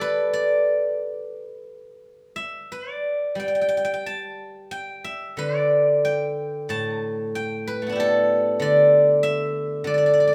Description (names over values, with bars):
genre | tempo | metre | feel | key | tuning
chinese traditional, Chinese solo plucked strings | 91 BPM | 4/4 | uneven beats, rubato | D zhi mode | A4 = 440 Hz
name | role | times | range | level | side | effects
steel-string zither | solo | 0.0-10.3 s | A2 to A5 | -22 LUFS | equal | none
room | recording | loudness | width
moderate recital hall reverb, RT60 1.4 s | none | -22 LUFS | mono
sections
0.0-10.3 A section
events
none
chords
none